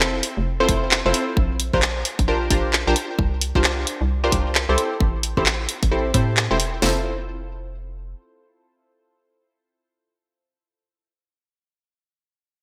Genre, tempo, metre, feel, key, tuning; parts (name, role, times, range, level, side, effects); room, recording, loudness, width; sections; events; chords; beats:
UK garage, two-step garage; 132 BPM; 4/4; swing 62% on 16ths; F major; A4 = 440 Hz
punchy chord stab; stabs; 0.0-11.1 s; C4 to C5; -26 LUFS; equal; chorus, phaser, delay
hollow knocking FM bass; bass; 0.0-8.1 s; E1 to A2; -27 LUFS; equal; sidechain pumping
garage drum kit; drums; 0.0-6.7 s; handclaps, hi-hat; -24 LUFS; equal; small room ambience, gated reverb
garage drum kit; drums; 0.7-7.0 s; hi-hat, kick drum, snare drum; -25 LUFS; equal; small room ambience
moderate lush hall reverb, RT60 1.9 s; bright 1980s-style digital production; -21 LUFS; mono
0.0-6.8 A section; 6.8-10.5 B section
filter sweep on FM bass 0.0-6.8
0.0 Fmaj7; 1.4 Bb69; 3.2 C9sus4; 4.8 Am7; 6.8 Fmaj7
0.00 0.46 0.91 | 1.37 1.82 2.28 2.73 | 3.19 3.64 4.09 4.55 | 5.00 5.46 5.91 6.37 | 6.82 7.28 7.73 8.19 | 8.64 9.10 9.55 10.00